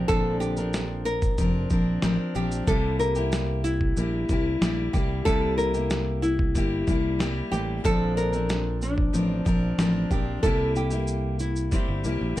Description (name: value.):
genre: acoustic pop.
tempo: 93 BPM.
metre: 4/4.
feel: straight.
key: C mixolydian.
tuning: A4 = 440 Hz.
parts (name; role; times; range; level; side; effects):
nylon-string guitar; melody; 0.0-12.4 s; C4 to Bb4; -28 LUFS; equal; none.
picked steel-string acoustic guitar; accompaniment; 0.0-12.4 s; Bb2 to Bb4; -28 LUFS; left 2 dB; none.
fingered electric bass; bass; 0.0-12.4 s; F1 to C2; -28 LUFS; right 1 dB; none.
dusty soul sampler-style drum kit; drums; 0.1-12.4 s; kick drum, shaker, snare drum; -27 LUFS; equal; none.
room: light reverb.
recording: dark, warm production.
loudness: -22 LUFS.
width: side -15 dB against mid.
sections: 0.0-12.4 A section.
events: drum fill 10.4-12.4.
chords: 0.0 Bbadd9; 2.7 C7; 7.8 Bbadd9; 10.4 C7.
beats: | 0.09 0.74 1.38 2.03 | 2.67 3.32 3.97 4.61 | 5.26 5.91 6.55 7.20 | 7.85 8.49 9.14 9.79 | 10.43 11.08 11.72 12.37.